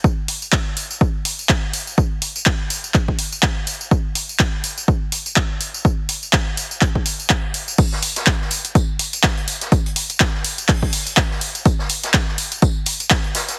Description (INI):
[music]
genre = house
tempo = 124 BPM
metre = 4/4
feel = swing 57% on 16ths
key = none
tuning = none
[part]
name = electronic kick drum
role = drums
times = 0.0-13.2 s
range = none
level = -20 LUFS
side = equal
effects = overdrive
[part]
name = punchy analog drum machine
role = drums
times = 0.0-13.6 s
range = crash cymbal, handclaps, hi-hat, tambourine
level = -23 LUFS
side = equal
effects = overdrive
[part]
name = vintage drum kit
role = drums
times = 7.8-13.6 s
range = hi-hat, snare drum, tambourine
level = -32 LUFS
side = equal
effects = high-pass filter on hats, high-pass filter on snare, high-pass filter on perc, high-pass filter on room
[sound]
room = light reverb, small room ambience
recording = heavily compressed radio sound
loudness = -19 LUFS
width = mono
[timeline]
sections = 0.0-7.8 A section; 7.8-13.6 B section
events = drop 7.8-13.6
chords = none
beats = | 0.04 0.53 1.01 1.49 | 1.98 2.46 2.94 3.43 | 3.91 4.40 4.88 5.37 | 5.85 6.33 6.82 7.30 | 7.78 8.27 8.75 9.24 | 9.72 10.20 10.69 11.17 | 11.65 12.14 12.62 13.11